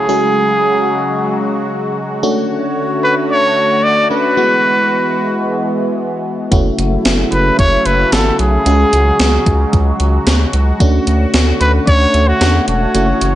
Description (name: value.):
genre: synth-pop.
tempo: 112 BPM.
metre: 4/4.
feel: straight.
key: unclear.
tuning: A4 = 444 Hz.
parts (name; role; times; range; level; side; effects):
breathy trumpet; melody; 0.0-13.4 s; F#4 to D5; -14 LUFS; equal; analog delay.
FM electric piano; accompaniment; 0.0-13.4 s; G#3 to G#4; -19 LUFS; equal; chorus, phaser.
sweeping resonant pad; sustained chords; 0.0-13.4 s; C#3 to C#5; -19 LUFS; left 1 dB; wide subtle chorus.
round analog bass; bass; 6.5-13.4 s; E1 to E2; -14 LUFS; equal; none.
gated 80s digital drum machine; drums; 6.5-13.3 s; hi-hat, kick drum, snare drum; -15 LUFS; equal; gated reverb, gated reverb snare.
room: light reverb, digital ambience.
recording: nothing above 10.4 kHz.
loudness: -11 LUFS.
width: side -13 dB against mid.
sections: 0.0-13.4 A section.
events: none.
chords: 0.1 C#sus4; 2.2 Dmaj7; 4.4 Eadd9; 6.5 F#m7; 8.7 C#sus4; 10.8 Dmaj7.